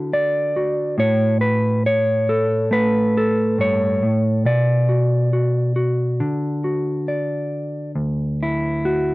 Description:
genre	folk, solo fingerstyle acoustic guitar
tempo	69 BPM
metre	4/4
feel	rubato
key	unclear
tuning	A4 = 440 Hz
part	mellow electric guitar	solo	0.0-9.1 s	D2 to D5	-17 LUFS	equal	none
room	light reverb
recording	worn, warbling old tape, cassette tape, warbly pitch drift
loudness	-17 LUFS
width	side -20 dB against mid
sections	0.0-8.0 A section; 8.0-9.1 B section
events	none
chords	0.0 Bm (rootless); 1.0 A9; 4.4 Bm; 8.0 N.C.

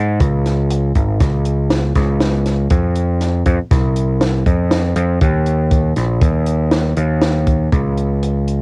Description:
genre	progressive instrumental, band music in an uneven meter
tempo	120 BPM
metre	5/4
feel	straight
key	unclear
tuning	A4 = 440 Hz
part	overdriven picked electric bass	bass	0.0-8.6 s	Ab1 to Ab2	-18 LUFS	equal	none
part	compact cocktail drum kit	drums	0.2-8.6 s	hi-hat, kick drum, snare drum	-20 LUFS	equal	none
room	little or no reverb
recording	home recording on cassette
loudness	-16 LUFS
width	mono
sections	0.0-7.7 A section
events	none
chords	none

